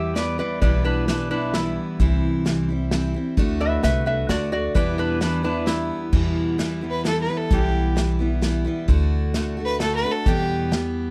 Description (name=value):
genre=honky-tonk and classic country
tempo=131 BPM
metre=3/4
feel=straight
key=E minor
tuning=A4 = 440 Hz
part: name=lap resonator guitar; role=second line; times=0.0-6.1 s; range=D4 to E5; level=-28 LUFS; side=equal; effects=none
part: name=picked steel-string acoustic guitar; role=accompaniment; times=0.0-11.1 s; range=E2 to G4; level=-27 LUFS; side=equal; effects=none
part: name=upright bass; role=bass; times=0.0-11.1 s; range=B1 to E2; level=-27 LUFS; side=equal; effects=none
part: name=unplugged drum kit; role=drums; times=0.2-10.8 s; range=crash cymbal, hi-hat, kick drum, snare drum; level=-26 LUFS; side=equal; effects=none
part: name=clear fiddle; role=melody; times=6.9-10.7 s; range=G4 to B4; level=-27 LUFS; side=equal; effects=none
room=small room ambience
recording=dry, close 1970s-style studio recording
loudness=-22 LUFS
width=mono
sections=0.0-6.1 A section; 6.1-11.1 A section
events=resonator guitar played with a steel bar solo 0.0-6.1; fiddle solo 6.1-11.1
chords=0.0 Em; 2.0 C; 3.4 D; 4.8 Em; 8.9 D; 10.3 Em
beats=0.16 | 0.62 1.08 1.54 | 2.00 2.46 2.92 | 3.38 3.84 4.29 | 4.75 5.21 5.67 | 6.13 6.59 7.05 | 7.51 7.97 8.43 | 8.88 9.34 9.80 | 10.26 10.72